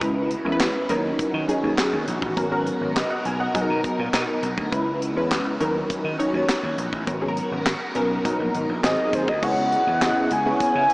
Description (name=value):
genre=early-eighties boogie funk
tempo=102 BPM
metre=4/4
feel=straight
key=C# dorian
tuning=A4 = 442 Hz
part: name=funky polysynth comp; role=accompaniment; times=0.0-10.8 s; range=F#3 to G#5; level=-24 LUFS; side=equal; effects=chorus
part: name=phased string machine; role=sustained chords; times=0.0-10.9 s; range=B2 to A#4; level=-31 LUFS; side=equal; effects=ensemble chorus, phaser
part: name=vintage slap bass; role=bass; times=0.0-10.9 s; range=G#1 to D#3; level=-28 LUFS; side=equal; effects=none
part: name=tight funk drum kit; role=drums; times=0.0-10.9 s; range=crash cymbal, handclaps, hi-hat, kick drum, snare drum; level=-28 LUFS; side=equal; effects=none
part: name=warm velvety synth lead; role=melody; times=8.9-10.9 s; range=B#4 to G#5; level=-21 LUFS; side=equal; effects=chorus
room=wet huge ambient reverb, RT60 7.7 s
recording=dreamy mix soaked in reverb, small speaker sound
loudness=-20 LUFS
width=side -23 dB against mid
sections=0.0-9.4 A section; 9.4-10.9 B section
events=none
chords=0.0 C#m7; 0.9 D#m7; 2.4 G#m11; 3.5 Bmaj7; 4.7 C#m7; 5.6 D#m7; 7.1 G#m11; 8.2 Bmaj7; 8.8 G#7; 9.4 C#m7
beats=| 0.01 0.60 1.19 1.78 | 2.37 2.96 3.54 4.13 | 4.72 5.31 5.90 6.49 | 7.07 7.66 8.25 8.84 | 9.43 10.02 10.60